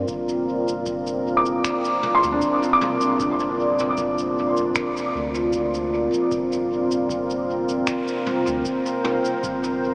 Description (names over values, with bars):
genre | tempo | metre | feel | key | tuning
ambient dub | 77 BPM | 4/4 | swing 53% on 16ths | G minor | A4 = 440 Hz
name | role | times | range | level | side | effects
deep dark ambient pad | sustained chords | 0.0-9.9 s | C4 to D5 | -24 LUFS | equal | chorus, built-in reverb
soft dub sub bass | bass | 0.0-9.9 s | F1 to D2 | -38 LUFS | equal | tube saturation
electronic kick drum | drums | 0.1-9.6 s | none | -43 LUFS | equal | none
jazz brush drum kit | drums | 0.1-9.8 s | cabasa, finger snaps, toms | -35 LUFS | equal | dub echo
felt-muted upright piano | arpeggios | 1.4-9.9 s | D4 to D6 | -26 LUFS | equal | diffuse ambient delay
room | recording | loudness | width
wet huge ambient reverb, RT60 7.1 s | dreamy mix soaked in reverb, small speaker sound | -23 LUFS | mono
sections
0.0-9.9 A section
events
none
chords
0.0 Gm